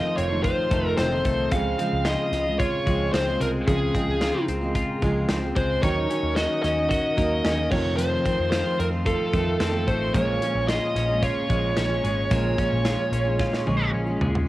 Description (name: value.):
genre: jangly indie pop.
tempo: 111 BPM.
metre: 4/4.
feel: straight.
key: Bb minor.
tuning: A4 = 439 Hz.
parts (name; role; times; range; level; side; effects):
bluesy overdriven lead guitar; melody; 0.0-13.9 s; Ab4 to F5; -26 LUFS; equal; distortion, cassette tape.
fingerpicked steel-string acoustic guitar; accompaniment; 0.0-14.5 s; F2 to Bb4; -29 LUFS; right 2 dB; none.
string machine, cellos; sustained chords; 0.0-14.5 s; Ab4 to Db6; -39 LUFS; equal; none.
twelve-string electric guitar; arpeggios; 0.0-14.5 s; F2 to Gb4; -28 LUFS; left 2 dB; spring reverb.
vintage muted picked electric bass; bass; 0.2-14.4 s; F1 to F2; -28 LUFS; equal; none.
modern studio drum kit; drums; 0.2-14.5 s; crash cymbal, hi-hat, kick drum, snare drum, toms; -28 LUFS; equal; none.
room: studio reverb.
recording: home recording on cassette.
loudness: -21 LUFS.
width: side -16 dB against mid.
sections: 0.0-14.5 A section.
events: drum fill 13.4-14.5.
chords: 0.0 F7; 1.5 Dbmaj7; 5.8 Ebm7; 7.7 F7; 10.1 Bbm7.